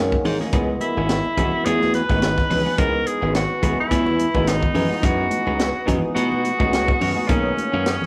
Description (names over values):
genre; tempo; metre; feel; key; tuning
electric jazz fusion; 106 BPM; 4/4; swing 55% on 16ths; C# dorian; A4 = 440 Hz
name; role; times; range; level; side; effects
barky tine electric piano; accompaniment; 0.0-8.0 s; D#3 to F#5; -30 LUFS; equal; overdrive
deep dark ambient pad; sustained chords; 0.1-8.1 s; A#4 to D#6; -33 LUFS; equal; chorus, built-in reverb
glassy slap bass; bass; 0.0-8.0 s; G#1 to B2; -26 LUFS; equal; none
clean electric guitar; stabs; 0.1-7.9 s; D#3 to G#4; -34 LUFS; equal; none
tight funk drum kit; drums; 0.1-8.1 s; hi-hat, kick drum, snare drum; -26 LUFS; equal; none
congas; percussion; 0.2-8.1 s; none; -31 LUFS; equal; none
bright tenor saxophone; melody; 0.8-8.1 s; C#4 to B4; -25 LUFS; equal; none
room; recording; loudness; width
moderate large studio reverb, RT60 1.1 s; band playing live in one room; -20 LUFS; mono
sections
0.0-8.1 A section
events
tine electric piano fill 0.0-0.5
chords
0.0 Bmaj13 (rootless); 0.5 C#m7; 4.8 F#13sus4; 7.3 Bmaj13